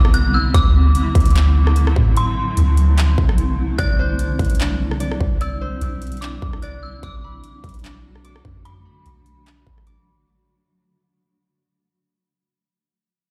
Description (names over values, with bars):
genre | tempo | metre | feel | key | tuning
hip hop, atmospheric cloud-rap | 148 BPM | 4/4 | half-time | unclear | A4 = 435 Hz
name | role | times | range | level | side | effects
dark detuned synth bell | melody | 0.0-10.2 s | B5 to F#6 | -30 LUFS | equal | chorus, phaser, digital delay
granular cloud pad | sustained chords | 0.0-10.2 s | D3 to F#4 | -28 LUFS | equal | built-in reverb, sidechain pumping
soft 808-style bass | bass | 0.0-10.2 s | A1 to A2 | -20 LUFS | equal | none
big-room dance drum kit | drums | 0.0-10.0 s | handclaps, hi-hat, kick drum, rim click | -22 LUFS | equal | none
concert harp | arpeggios | 3.8-12.3 s | D4 to D6 | -35 LUFS | equal | digital delay
room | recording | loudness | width
little or no reverb | played on a big sound system in a bare room, large studio reverb | -17 LUFS | mono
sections
0.0-10.3 A section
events
fade-out 0.0-10.3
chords
0.0 Cmaj9; 0.5 D9; 3.8 Cmaj9; 7.0 Bm7